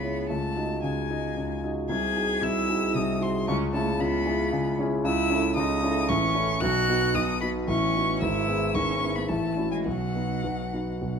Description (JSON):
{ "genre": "quick classical-period movement for piano trio", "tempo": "113 BPM", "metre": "3/4", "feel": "rubato", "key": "C# minor", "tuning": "A4 = 440 Hz", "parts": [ { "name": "rich violin", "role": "melody", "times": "0.0-11.2 s", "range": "F#5 to G#6", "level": "-30 LUFS", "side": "left 4 dB", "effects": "none" }, { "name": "clear cello", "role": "second line", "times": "0.0-11.2 s", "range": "F#3 to G#4", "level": "-32 LUFS", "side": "right 9 dB", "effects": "none" }, { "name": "dark concert grand piano", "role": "accompaniment", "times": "0.0-11.2 s", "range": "G#1 to D#5", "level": "-26 LUFS", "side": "equal", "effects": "none" } ], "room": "wet recital hall reverb, RT60 1.5 s", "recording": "none", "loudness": "-24 LUFS", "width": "side -6 dB against mid", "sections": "0.0-11.2 A section", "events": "none", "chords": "0.3 D#m7b5/C#; 1.9 G#7/B#; 3.5 C#m; 5.0 A/C#; 6.1 A; 6.6 B; 7.7 B7/A; 8.2 E/G#; 9.3 F#m7/A; 9.9 B" }